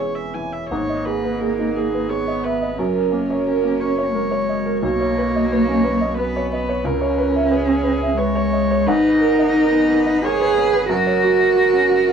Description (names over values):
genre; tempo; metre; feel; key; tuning
neoclassical piano and strings; 89 BPM; 3/4; rubato; G# minor; A4 = 439 Hz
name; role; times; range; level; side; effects
dark cello; second line; 0.0-12.1 s; G#3 to G#4; -19 LUFS; right 2 dB; none
felt-muted upright piano; accompaniment; 0.0-12.1 s; B1 to E5; -21 LUFS; left 1 dB; none
rich viola; accompaniment; 0.0-12.1 s; G#4 to G#5; -24 LUFS; right 5 dB; none
soft dub sub bass; bass; 0.0-12.1 s; E1 to C#2; -32 LUFS; equal; none
room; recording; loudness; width
moderate studio reverb, RT60 0.6 s; home recording on cassette, vinyl crackle; -16 LUFS; side -7 dB against mid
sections
0.7-12.1 A section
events
none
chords
0.0 C#m/E; 0.7 G#madd9; 2.8 F#; 4.8 Badd9; 6.8 C#m7; 8.9 G#madd9; 10.9 F#